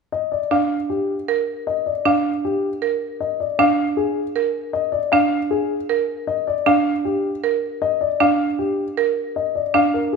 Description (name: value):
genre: classical, minimalist pattern music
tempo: 156 BPM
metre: 4/4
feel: straight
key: Eb major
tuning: A4 = 440 Hz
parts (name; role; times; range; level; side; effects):
- dark baby grand piano; melody; 0.1-10.2 s; G4 to F5; -20 LUFS; left 7 dB; none
- buzzing marimba with hard mallets; arpeggios; 0.5-10.0 s; D4 to Bb4; -21 LUFS; right 9 dB; none
room: wet recital hall reverb, RT60 1.7 s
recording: minimal, uncompressed stereo recording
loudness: -18 LUFS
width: side -4 dB against mid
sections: 0.0-10.2 A section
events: none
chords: 0.0 Ebmaj7(no3) (rootless); 9.2 Absus2 (rootless)